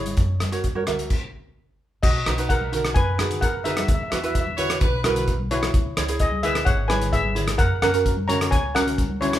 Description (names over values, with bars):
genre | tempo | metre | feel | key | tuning
calypso | 130 BPM | 4/4 | straight | B major | A4 = 440 Hz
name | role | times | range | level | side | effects
steel pan | melody | 0.0-9.4 s | E4 to A#5 | -25 LUFS | left 2 dB | none
ukulele | accompaniment | 0.0-9.4 s | C#4 to E5 | -27 LUFS | right 4 dB | none
upright bass | bass | 0.0-9.4 s | G#1 to F#2 | -27 LUFS | equal | none
cloth-damped thuddy drum kit | drums | 0.1-9.4 s | crash cymbal, hi-hat, kick drum, rim click | -24 LUFS | equal | none
congas | percussion | 0.1-9.4 s | none | -33 LUFS | left 2 dB | none
clear horn section | second line | 4.6-5.4 s | B4 to C#5 | -26 LUFS | left 1 dB | none
room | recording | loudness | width
moderate large studio reverb, RT60 0.8 s | band playing live in one room | -20 LUFS | side -12 dB against mid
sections
0.0-2.0 A section; 2.0-9.4 B section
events
stop 1.1-2.0; drum fill 9.0-9.4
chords
0.2 F#; 2.0 Bmaj7; 3.9 Esus2; 5.7 C#m; 7.6 F#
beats
| 0.18 0.64 1.10 1.57 | 2.03 2.50 2.96 3.42 | 3.89 4.35 4.81 5.27 | 5.74 6.20 6.66 7.13 | 7.59 8.05 8.52 8.98